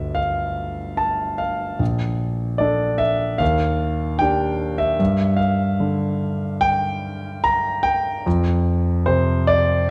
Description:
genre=classical, impressionist solo piano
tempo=74 BPM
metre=4/4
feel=rubato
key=G minor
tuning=A4 = 440 Hz
part: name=clear grand piano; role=solo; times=0.0-9.9 s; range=G1 to Bb5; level=-21 LUFS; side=equal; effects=none
room=moderate recital hall reverb, RT60 1.5 s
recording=none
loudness=-21 LUFS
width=mono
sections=0.0-9.9 A section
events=none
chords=0.0 G5; 1.8 Bbmaj7; 3.4 Ebmaj7; 5.0 G5; 8.3 F5

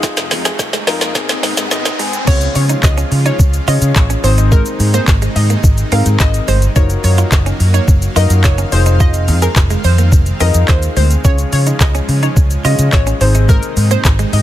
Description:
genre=dance-pop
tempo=107 BPM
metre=4/4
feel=straight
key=Db major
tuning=A4 = 440 Hz
part: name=warm concert grand piano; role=accompaniment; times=0.0-14.1 s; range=C4 to Ab5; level=-22 LUFS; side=left 6 dB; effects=sidechain pumping
part: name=supersaw pad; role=sustained chords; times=0.0-14.4 s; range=C3 to F5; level=-24 LUFS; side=right 1 dB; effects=sidechain pumping
part: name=direct-recorded clean electric guitar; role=riff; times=0.0-14.4 s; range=Ab3 to Ab4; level=-24 LUFS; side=right 6 dB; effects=wide subtle chorus
part: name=vintage muted fingered electric bass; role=bass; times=0.0-14.4 s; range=F1 to Db3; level=-13 LUFS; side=equal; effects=sidechain pumping
part: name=smooth R&B drum kit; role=drums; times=0.0-14.4 s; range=crash cymbal, handclaps, hi-hat, kick drum, shaker, snare drum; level=-14 LUFS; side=equal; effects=none
part: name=riser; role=sound effects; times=0.0-2.3 s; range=none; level=-24 LUFS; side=right 1 dB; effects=none
part: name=analog pluck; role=melody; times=2.3-14.4 s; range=Bb4 to F5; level=-21 LUFS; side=equal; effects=chorus, ping-pong delay
room=little or no reverb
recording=high-pass filter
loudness=-10 LUFS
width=side -13 dB against mid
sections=0.0-2.3 A section; 2.3-14.4 B section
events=build-up 0.0-2.3; drum fill 0.0-2.3; riser 0.0-2.3; grand piano fill 1.4-2.3; drop 2.3-14.4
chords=0.0 Fm7; 1.2 Ab; 2.3 Db; 4.2 Ab; 6.8 Ebmadd9/Gb; 8.7 Fm7; 11.2 Db; 13.2 Ab

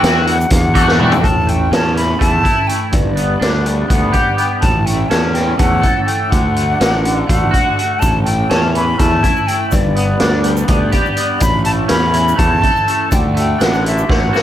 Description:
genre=psychedelic rock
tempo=247 BPM (eighths)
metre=7/8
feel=straight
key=unclear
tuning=A4 = 440 Hz
part: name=bright silver concert flute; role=melody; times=0.0-14.4 s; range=D5 to B5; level=-18 LUFS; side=left 1 dB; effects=slapback echo
part: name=string machine, violas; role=sustained chords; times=0.0-14.4 s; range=F#3 to D5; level=-27 LUFS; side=right 6 dB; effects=none
part: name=twangy electric guitar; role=riff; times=0.0-14.4 s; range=G2 to A4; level=-18 LUFS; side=equal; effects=rotary speaker, double-tracked left and right
part: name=fuzz fingered electric bass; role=bass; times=0.0-14.3 s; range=G1 to E2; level=-17 LUFS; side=equal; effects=overdrive
part: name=raw garage drum kit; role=drums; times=0.0-14.4 s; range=hi-hat, kick drum, snare drum, toms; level=-16 LUFS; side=equal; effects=none
part: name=egg shaker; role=percussion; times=0.4-1.2, 8.0-14.4 s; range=none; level=-33 LUFS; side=right 8 dB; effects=none
room=light reverb, small room ambience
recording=faint mains hum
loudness=-12 LUFS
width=side -11 dB against mid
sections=0.0-1.2 A section; 1.2-14.4 B section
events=flute solo 0.0-1.2; drum fill 0.9-1.2, 14.1-14.4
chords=0.0 D6/E; 1.2 A; 2.9 G; 4.6 A; 6.3 D; 8.0 A; 9.7 G; 11.4 A; 13.1 D

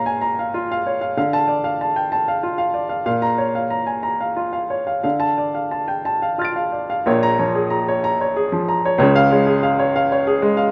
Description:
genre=neoclassical minimalist piano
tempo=59-64 BPM (dotted quarters)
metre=6/8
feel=rubato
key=Bb minor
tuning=A4 = 440 Hz
part: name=warm upright piano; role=solo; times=0.0-10.7 s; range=Bb1 to D7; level=-20 LUFS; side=equal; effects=none
room=moderate studio reverb, RT60 0.6 s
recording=rough home demo mix, faint mains hum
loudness=-20 LUFS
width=mono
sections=0.0-7.1 A section; 7.1-10.7 B section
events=none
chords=0.0 Bbm; 1.2 Dm; 3.1 Bbm; 5.0 Dm; 7.1 Bbm7; 9.0 Db

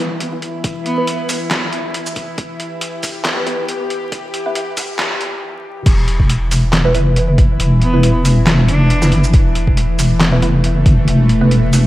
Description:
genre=deep dubstep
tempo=138 BPM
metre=4/4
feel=swing 54% on 16ths, half-time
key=E phrygian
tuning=A4 = 444 Hz
part: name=bowed-like drone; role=sustained chords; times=0.0-11.9 s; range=E3 to G4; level=-22 LUFS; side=left 1 dB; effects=built-in reverb, vintage 12-bit sampler grit
part: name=filtered dub chord stab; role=stabs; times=0.0-11.6 s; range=B3 to B4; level=-23 LUFS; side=right 1 dB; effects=phaser, wide subtle chorus, dub echo
part: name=deep soft wobble bass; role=bass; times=0.0-11.9 s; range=E1 to G1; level=-13 LUFS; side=equal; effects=chorus, high-pass filter
part: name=trip hop sampler-style drum kit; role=drums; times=0.2-11.8 s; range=crash cymbal, handclaps, hi-hat, shaker, snare drum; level=-20 LUFS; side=equal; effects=overdrive
part: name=electronic kick drum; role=drums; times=0.6-11.0 s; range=none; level=-12 LUFS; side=equal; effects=none
part: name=rich cello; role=melody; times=0.9-1.2, 7.8-9.3 s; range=B3 to D4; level=-24 LUFS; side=right 1 dB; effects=dub echo
room=moderate lush hall reverb, RT60 2.1 s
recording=dreamy mix soaked in reverb, vinyl crackle, high-pass filter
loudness=-13 LUFS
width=side -16 dB against mid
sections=0.0-5.9 A section; 5.9-11.9 B section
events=build-up 0.0-5.9; filter sweep on synth stab 0.0-5.9; filter sweep on synth drone 0.0-5.9; stop 5.4-5.9; drop 5.9-11.9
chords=0.0 E5

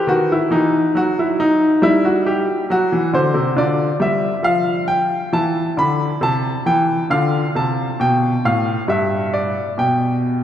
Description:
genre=classical, baroque-style suite movement for grand piano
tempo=68 BPM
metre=4/4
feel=rubato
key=unclear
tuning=A4 = 441 Hz
part: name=bright baby grand piano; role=solo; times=0.0-10.4 s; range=G2 to B5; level=-15 LUFS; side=equal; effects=none
room=wet church reverb, RT60 3.3 s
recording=heard from further back in the room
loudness=-15 LUFS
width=side -10 dB against mid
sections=0.0-10.4 A section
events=none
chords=0.1 Ebm; 1.8 Em/G; 3.6 G5/D; 5.3 C; 7.1 Dm; 8.9 G

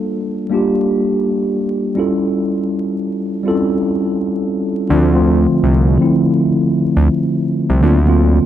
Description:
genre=lo-fi hip hop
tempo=82 BPM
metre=4/4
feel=swing 64% on 16ths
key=D minor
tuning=A4 = 441 Hz
part: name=mellow tine electric piano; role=accompaniment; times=0.0-8.5 s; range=D3 to A4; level=-14 LUFS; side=equal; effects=medium stereo tremolo, low-pass filter
part: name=fat analog bass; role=bass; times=4.9-8.4 s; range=C2 to D2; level=-13 LUFS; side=equal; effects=none
room=light reverb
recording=dark, warm production, vinyl crackle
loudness=-13 LUFS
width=side -11 dB against mid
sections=0.0-4.9 A section; 4.9-8.5 B section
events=none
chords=0.0 Gm9; 2.0 A7b13; 4.9 Dm7; 7.8 D7alt

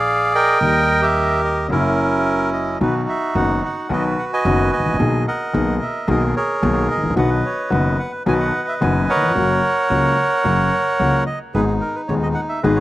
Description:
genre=tango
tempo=110 BPM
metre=4/4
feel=rubato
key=B major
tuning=A4 = 440 Hz
part: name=bandoneon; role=melody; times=0.0-12.8 s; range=C#4 to G#5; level=-18 LUFS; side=right 2 dB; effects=slapback echo
part: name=warm grand piano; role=accompaniment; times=0.0-12.8 s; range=D#1 to G#4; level=-21 LUFS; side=left 3 dB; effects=none
part: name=upright bass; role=bass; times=0.0-12.8 s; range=F#1 to D#2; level=-23 LUFS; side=right 1 dB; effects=none
room=little or no reverb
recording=recorded outdoors, with no room sound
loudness=-16 LUFS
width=side -16 dB against mid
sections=0.0-2.8 A section; 2.8-12.8 B section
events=none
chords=0.0 A#7; 0.6 D#; 1.7 F#7; 2.8 B; 5.0 G#madd9/B; 7.2 B; 9.4 F#; 11.6 G#m

